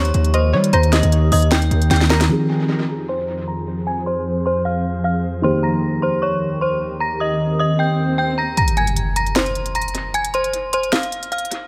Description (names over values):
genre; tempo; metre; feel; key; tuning
hip hop, trap; 153 BPM; 4/4; half-time; F minor; A4 = 440 Hz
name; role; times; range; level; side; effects
metallic FM bell; melody; 0.0-11.5 s; C5 to Bb6; -24 LUFS; equal; chorus, low-pass filter, analog delay
felt-muted upright piano; accompaniment; 0.0-8.6 s; Eb3 to Ab4; -28 LUFS; equal; low-pass filter, analog delay
ethereal airy pad; sustained chords; 0.0-8.5 s; Eb2 to C5; -25 LUFS; equal; ensemble chorus, built-in reverb, low-pass filter
hard-hitting 808-style bass; bass; 0.0-2.3 s; Eb2 to G3; -18 LUFS; equal; none
trap drum kit; drums; 0.0-2.3, 8.6-11.6 s; hi-hat, snare drum; -25 LUFS; equal; analog delay
hollow square pluck; second line; 0.3-2.3 s; Bb4 to Eb5; -27 LUFS; equal; chorus, analog delay
swell and impact; sound effects; 7.5-10.1 s; none; -26 LUFS; equal; none
room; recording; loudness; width
light reverb; echo-heavy mix; -19 LUFS; mono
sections
0.0-2.3 A section; 2.3-8.6 B section; 8.6-11.7 C section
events
drum fill 1.9-2.3; filter sweep 2.3-8.6; swell 7.5-8.6; kick muted 8.6-11.7; impact 8.6-10.1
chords
0.0 Eb; 2.3 Fm; 5.4 Eb; 8.6 Fm